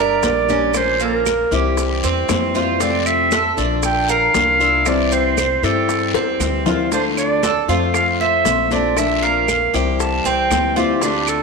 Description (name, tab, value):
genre	latin, Cuban son and guajira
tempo	117 BPM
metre	4/4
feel	straight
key	unclear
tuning	A4 = 440 Hz
part	warm clarinet	melody	0.0-11.4 s	G4 to A5	-19 LUFS	right 3 dB	none
part	fingerpicked steel-string acoustic guitar	accompaniment	0.0-11.4 s	C3 to G4	-22 LUFS	left 8 dB	none
part	Cuban tres	arpeggios	0.0-11.4 s	Bb3 to C5	-22 LUFS	right 6 dB	none
part	upright bass	bass	0.0-11.4 s	G1 to G2	-25 LUFS	equal	none
part	bongos	percussion	0.2-11.3 s	none	-28 LUFS	left 11 dB	none
part	congas	percussion	0.2-11.4 s	none	-28 LUFS	right 1 dB	none
part	guiro	percussion	0.2-11.4 s	none	-31 LUFS	left 12 dB	none
part	maracas	percussion	0.2-11.4 s	none	-31 LUFS	right 14 dB	none
part	claves	percussion	0.7-11.4 s	none	-32 LUFS	right 12 dB	none
room	wet echo chamber reverb, RT60 2.1 s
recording	1960s-style stereo with parts hard left and right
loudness	-15 LUFS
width	side -4 dB against mid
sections	0.0-11.4 A section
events	drum fill 6.1-6.9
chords	0.0 Gm; 0.7 Bbm; 1.8 C; 2.8 F; 3.8 Bb; 4.9 C; 6.9 Dm; 7.9 F; 9.0 Bb; 10.0 C